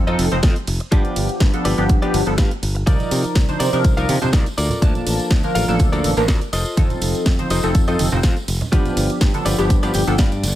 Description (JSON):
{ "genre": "filtered disco house", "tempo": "123 BPM", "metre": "4/4", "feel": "straight", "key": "unclear", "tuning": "A4 = 441 Hz", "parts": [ { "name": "funky polysynth comp", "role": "accompaniment", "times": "0.0-10.1 s", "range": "F3 to A5", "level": "-22 LUFS", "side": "equal", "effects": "chorus, phaser, sidechain pumping" }, { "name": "modern bright fingered electric bass", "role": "bass", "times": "0.0-10.5 s", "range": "F1 to C3", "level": "-22 LUFS", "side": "equal", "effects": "sidechain pumping" }, { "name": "direct-recorded clean electric guitar", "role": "riff", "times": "0.1-10.6 s", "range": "Eb4 to G5", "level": "-26 LUFS", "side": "left 1 dB", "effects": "sidechain pumping" }, { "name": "house drum kit", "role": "drums", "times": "0.1-10.5 s", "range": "hi-hat, ride cymbal, snare drum", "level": "-27 LUFS", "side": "right 1 dB", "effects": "sidechain pumping on hats, sidechain pumping on cymbals" }, { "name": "electronic kick drum", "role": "drums", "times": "0.4-10.3 s", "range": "none", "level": "-16 LUFS", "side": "equal", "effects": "none" }, { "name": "congas and tambourine", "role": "percussion", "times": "2.9-10.5 s", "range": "none", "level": "-28 LUFS", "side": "right 2 dB", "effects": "sidechain pumping on perc" } ], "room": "digital ambience", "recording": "none", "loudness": "-15 LUFS", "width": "side -13 dB against mid", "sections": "0.0-10.6 A section", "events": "clean electric guitar fill 9.7-10.6", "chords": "0.0 F7; 0.9 G7; 2.9 Cm11; 4.6 Bbmaj7; 6.5 F7; 8.7 G7", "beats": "0.43 | 0.92 1.41 1.90 2.38 | 2.87 3.36 3.85 4.33 | 4.82 5.31 5.80 6.29 | 6.77 7.26 7.75 8.24 | 8.72 9.21 9.70 10.19" }